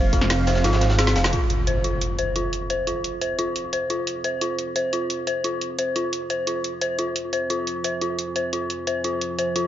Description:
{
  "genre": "dark technical drum and bass",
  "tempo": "175 BPM",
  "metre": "4/4",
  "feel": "straight",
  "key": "F minor",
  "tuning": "A4 = 440 Hz",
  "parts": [
    { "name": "dark analog pad", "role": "sustained chords", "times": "0.0-9.7 s", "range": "F3 to Ab5", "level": "-32 LUFS", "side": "right 2 dB", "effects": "chorus, sidechain pumping" },
    { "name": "dark detuned synth bell", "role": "arpeggios", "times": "0.1-9.6 s", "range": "F4 to F5", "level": "-24 LUFS", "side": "left 1 dB", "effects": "chorus, sidechain pumping, tape echo" },
    { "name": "wide detuned saw bass", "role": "bass", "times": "0.1-1.3 s", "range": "F1 to Ab1", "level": "-20 LUFS", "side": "equal", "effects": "chorus, overdrive, sidechain pumping" },
    { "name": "crunchy breakbeat drum kit", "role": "drums", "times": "0.1-1.3 s", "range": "hi-hat, snare drum", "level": "-31 LUFS", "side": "right 1 dB", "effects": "high-pass filter on hats, high-pass filter on snare, high-pass filter on room" },
    { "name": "drum and bass drum kit", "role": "drums", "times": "0.1-9.6 s", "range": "hi-hat, ride cymbal, snare drum", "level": "-27 LUFS", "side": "right 1 dB", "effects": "none" },
    { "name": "impact", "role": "sound effects", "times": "1.3-2.7 s", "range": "none", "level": "-26 LUFS", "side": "equal", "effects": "none" }
  ],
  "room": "light reverb, digital ambience",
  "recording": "nothing above 7.5 kHz",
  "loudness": "-21 LUFS",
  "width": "side -11 dB against mid",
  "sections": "0.0-1.3 A section; 1.3-9.7 B section",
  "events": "drop 0.0-1.3; drum fill 1.0-1.3; band accent 1.2; impact 1.3-2.7; filter sweep on analog synth pad 1.3-9.7",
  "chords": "0.0 F5"
}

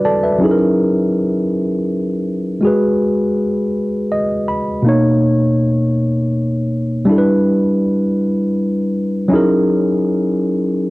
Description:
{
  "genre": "R&B",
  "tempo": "54 BPM (dotted quarters)",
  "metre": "6/8",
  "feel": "straight",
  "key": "B major",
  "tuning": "A4 = 437 Hz",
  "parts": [
    { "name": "tine electric piano", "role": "solo", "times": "0.0-10.9 s", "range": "B2 to B5", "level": "-14 LUFS", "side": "equal", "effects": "cassette tape" }
  ],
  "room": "digital ambience",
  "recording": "home recording on cassette",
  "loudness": "-14 LUFS",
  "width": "side -20 dB against mid",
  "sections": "0.0-4.8 A section; 4.8-10.9 B section",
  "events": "tine electric piano fill 0.0-0.4, 3.7-4.8",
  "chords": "0.4 F#13; 2.6 G#m7; 4.8 Bmaj9; 7.1 G6; 9.3 F#13"
}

